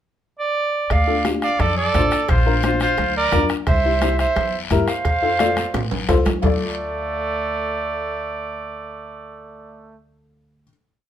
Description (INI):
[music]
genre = latin, cumbia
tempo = 174 BPM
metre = 4/4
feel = straight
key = D minor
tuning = A4 = 441 Hz
[part]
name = clear clarinet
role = melody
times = 0.4-10.0 s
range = C5 to F5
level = -22 LUFS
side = right 3 dB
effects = none
[part]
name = bright trumpet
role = second line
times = 0.9-10.0 s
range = A3 to D5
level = -27 LUFS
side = right 3 dB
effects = none
[part]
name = upright bass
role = bass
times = 0.9-10.6 s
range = A1 to A2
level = -24 LUFS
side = equal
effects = none
[part]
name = bombo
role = percussion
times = 0.9-6.5 s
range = none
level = -24 LUFS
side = equal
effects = none
[part]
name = cowbell and timbales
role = percussion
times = 0.9-6.5 s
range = none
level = -30 LUFS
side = right 4 dB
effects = none
[part]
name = guiro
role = percussion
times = 0.9-6.5 s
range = none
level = -33 LUFS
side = left 6 dB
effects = none
[part]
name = dark upright piano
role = accompaniment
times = 1.1-10.7 s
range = D4 to D5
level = -24 LUFS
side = left 6 dB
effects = none
[part]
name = congas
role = percussion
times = 1.2-6.5 s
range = none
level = -28 LUFS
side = left 2 dB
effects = none
[sound]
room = moderate studio reverb, RT60 0.7 s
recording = minimal, uncompressed stereo recording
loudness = -17 LUFS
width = side -10 dB against mid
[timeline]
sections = 0.0-0.9 pickup bar; 0.9-6.4 groove; 6.4-9.2 final chord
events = drum fill 5.6-6.4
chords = 0.0 N.C.; 0.9 Dm; 2.3 Bbadd9; 3.7 C; 5.0 F; 6.4 Dm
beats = 0.21 0.56 | 0.90 1.25 1.59 1.94 | 2.29 2.63 2.98 3.32 | 3.67 4.01 4.36 4.70 | 5.05 5.39 5.74 6.08 | 6.43 6.78 7.12 7.47 | 7.82 8.16 8.51 8.86